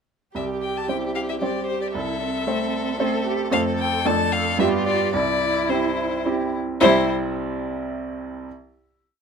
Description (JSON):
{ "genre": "quick classical-period movement for piano quartet", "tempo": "112 BPM", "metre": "3/4", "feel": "straight", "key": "C major", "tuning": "A4 = 440 Hz", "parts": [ { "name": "bright baby grand piano", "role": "accompaniment", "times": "0.3-8.5 s", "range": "C2 to E5", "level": "-24 LUFS", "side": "right 2 dB", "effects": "none" }, { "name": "rich violin", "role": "melody", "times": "0.4-7.1 s", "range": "C5 to A5", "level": "-24 LUFS", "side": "left 6 dB", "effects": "none" }, { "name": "clear violin", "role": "second line", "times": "0.4-7.1 s", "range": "E4 to A4", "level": "-29 LUFS", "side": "left 4 dB", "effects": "none" }, { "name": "warm cello", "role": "second line", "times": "0.4-7.1 s", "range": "G3 to A4", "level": "-28 LUFS", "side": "right 6 dB", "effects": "none" } ], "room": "light reverb", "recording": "close, detailed microphones", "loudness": "-20 LUFS", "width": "side -6 dB against mid", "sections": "0.4-6.8 A section; 6.8-8.5 final chord", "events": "none", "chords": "0.4 C; 1.9 Am/C; 3.5 F; 4.1 Dm/F; 4.6 G7; 5.1 C", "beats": "| 0.35 0.89 1.42 | 1.95 2.48 3.00 | 3.53 4.06 4.60 | 5.14 5.70 6.26 | 6.81 7.36 7.91" }